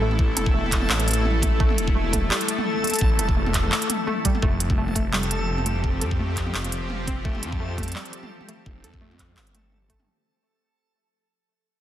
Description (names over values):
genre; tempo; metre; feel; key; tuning
half-time drum and bass; 170 BPM; 4/4; swing 56% on 16ths, half-time; unclear; A4 = 440 Hz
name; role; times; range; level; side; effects
bowed-like drone; sustained chords; 0.0-10.0 s; F3 to A4; -30 LUFS; left 2 dB; built-in reverb, sidechain pumping
warbly dusty pluck; arpeggios; 0.0-10.1 s; G3 to A4; -32 LUFS; right 2 dB; chorus, vintage 12-bit sampler grit, tape echo
phased detuned saw bass; bass; 0.0-10.1 s; E1 to F2; -26 LUFS; equal; phaser, tube saturation
backwards swelling texture; texture; 0.0-10.1 s; A4; -33 LUFS; left 1 dB; built-in reverb
industrial drum kit; drums; 0.1-10.1 s; handclaps, hi-hat, toms; -27 LUFS; right 1 dB; none
electronic kick drum; drums; 0.2-10.0 s; none; -24 LUFS; equal; none
room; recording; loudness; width
light reverb; dense, heavily limited modern master; -21 LUFS; side -12 dB against mid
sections
0.0-10.1 A section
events
drop 0.0-10.1; fade-out 4.4-10.1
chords
0.0 A5; 4.4 F